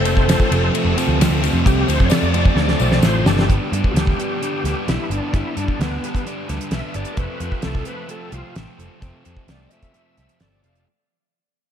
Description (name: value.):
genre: classic rock.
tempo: 130 BPM.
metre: 4/4.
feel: straight.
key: unclear.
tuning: A4 = 439 Hz.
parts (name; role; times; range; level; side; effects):
overdriven tonewheel organ; melody; 0.0-10.9 s; B3 to F5; -26 LUFS; left 2 dB; slow rotary speaker, chorus vibrato, slapback echo.
crunchy overdriven guitar; riff; 0.0-3.5 s; F2 to C4; -24 LUFS; equal; none.
overdriven electric guitar; riff; 0.0-10.9 s; F2 to D4; -25 LUFS; right 1 dB; none.
picked electric bass; bass; 0.0-10.8 s; F1 to G2; -21 LUFS; equal; none.
damped 70s drum kit; drums; 0.1-10.9 s; hi-hat, kick drum, ride cymbal, snare drum; -20 LUFS; equal; none.
tambourine; percussion; 0.1-3.4 s; none; -36 LUFS; left 16 dB; none.
room: light reverb, small room reverb.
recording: none.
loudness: -16 LUFS.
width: side -9 dB against mid.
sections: 0.0-3.5 A section; 3.5-10.9 B section.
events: tonewheel organ solo 0.0-3.5, 3.5-10.9; drum fill 2.6-3.5; fade-out 3.5-10.9.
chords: 0.0 F; 3.5 G; 7.2 F.